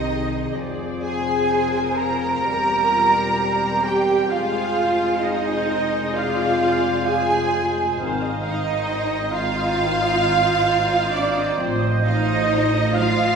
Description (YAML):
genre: classical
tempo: 66 BPM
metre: 4/4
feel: rubato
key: unclear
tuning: A4 = 440 Hz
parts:
  - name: bright symphonic violin section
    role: melody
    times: 0.0-13.4 s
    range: D5 to Bb5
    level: -31 LUFS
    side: left 1 dB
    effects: none
  - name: clear oboe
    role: second line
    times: 0.0-13.2 s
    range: C5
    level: -32 LUFS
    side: right 3 dB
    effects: none
  - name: mellow clarinet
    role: second line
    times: 0.0-13.4 s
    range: D5 to Bb5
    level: -30 LUFS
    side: left 1 dB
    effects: none
  - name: rich symphonic violin section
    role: second line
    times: 0.0-13.4 s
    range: D5 to Bb5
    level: -32 LUFS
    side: right 1 dB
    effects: none
  - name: silver concert flute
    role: second line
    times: 0.0-13.4 s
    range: D5 to Bb5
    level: -29 LUFS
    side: right 2 dB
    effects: none
  - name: rich symphonic viola section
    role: accompaniment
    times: 0.0-13.4 s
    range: F4 to F5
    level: -30 LUFS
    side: equal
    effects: none
  - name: warm bassoon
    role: accompaniment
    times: 0.0-13.4 s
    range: Eb3 to Ab3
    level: -31 LUFS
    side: right 2 dB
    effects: none
  - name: warm French horn section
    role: sustained chords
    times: 0.0-11.9 s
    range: Eb3 to C4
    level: -29 LUFS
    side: left 4 dB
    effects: none
  - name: dark trumpet section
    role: stabs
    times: 0.0-13.4 s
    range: D5 to Bb5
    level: -25 LUFS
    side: right 4 dB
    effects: none
  - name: clear symphonic cello section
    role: bass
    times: 0.0-13.4 s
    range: D4 to Bb4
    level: -24 LUFS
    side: right 1 dB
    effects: none
  - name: clear symphonic double bass section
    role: bass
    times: 0.0-13.4 s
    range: E1 to C2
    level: -27 LUFS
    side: right 1 dB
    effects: none
room: wet scoring stage reverb, RT60 1.8 s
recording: heard from further back in the room, small room ambience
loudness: -18 LUFS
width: side -6 dB against mid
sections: 0.0-13.4 A section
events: none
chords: 0.0 Cm; 0.6 Fm; 2.5 C7/E; 4.3 Fm; 8.0 Fm7/Ab; 11.6 F7/A